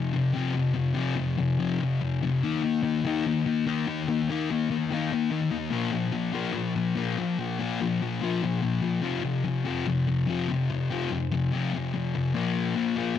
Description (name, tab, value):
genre	rock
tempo	145 BPM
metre	4/4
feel	straight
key	unclear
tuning	A4 = 440 Hz
part	thick fuzz guitar	solo	0.0-13.2 s	F2 to Eb4	-25 LUFS	left 4 dB	distortion
room	light reverb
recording	none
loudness	-25 LUFS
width	side -9 dB against mid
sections	0.0-12.4 A section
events	none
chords	0.0 F5; 2.4 Eb5; 5.7 Bb5; 9.0 F5; 12.4 Bb5